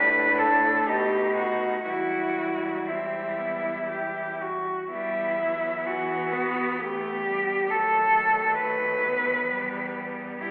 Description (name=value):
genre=classical, lyrical piece for cello ensemble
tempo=57-69 BPM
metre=3/4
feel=rubato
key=E minor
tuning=A4 = 441 Hz
part: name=rich cello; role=melody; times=0.0-10.5 s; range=E4 to B4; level=-27 LUFS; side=equal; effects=none
part: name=rich cello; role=second line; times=0.0-10.5 s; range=A3 to G4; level=-34 LUFS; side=equal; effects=none
part: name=rich cello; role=accompaniment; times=0.0-10.5 s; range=E3 to B3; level=-37 LUFS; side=equal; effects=none
part: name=rich cello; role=bass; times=0.0-10.5 s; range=D#2 to B2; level=-39 LUFS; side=equal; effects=none
room=wet recital hall reverb, RT60 1.4 s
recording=recorded in a church or concert hall, telephone sound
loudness=-26 LUFS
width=mono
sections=0.0-4.9 A section; 4.9-10.5 B section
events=none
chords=0.0 Asus24; 0.9 B7; 1.9 Em; 7.7 B7/D#; 9.5 Em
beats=0.88 | 1.87 2.88 3.89 | 4.91 5.87 6.80 | 7.70 8.60 9.52 | 10.40